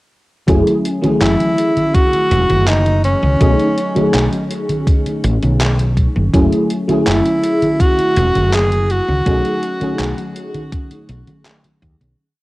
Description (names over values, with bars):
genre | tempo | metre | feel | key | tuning
vaporwave | 82 BPM | 4/4 | straight | F# dorian | A4 = 442 Hz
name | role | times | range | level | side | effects
mellow FM electric piano | accompaniment | 0.5-12.2 s | E3 to G#4 | -18 LUFS | equal | ensemble chorus, cassette tape, tape echo
woody fretless electric bass | bass | 0.5-12.1 s | E1 to D#2 | -16 LUFS | equal | none
detuned 8-bit digital drum machine | drums | 0.5-12.2 s | congas, handclaps, hi-hat | -23 LUFS | equal | overdrive, cassette tape
electronic kick drum | drums | 0.5-12.0 s | none | -14 LUFS | equal | cassette tape
warm tenor saxophone | melody | 1.2-10.4 s | C#4 to G#4 | -17 LUFS | equal | cassette tape, tape echo
room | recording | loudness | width
little or no reverb | home recording on cassette | -12 LUFS | side -19 dB against mid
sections
0.5-12.2 groove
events
fade-out 8.3-12.2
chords
0.5 F#m9; 3.4 B13; 6.3 F#m9; 9.3 B13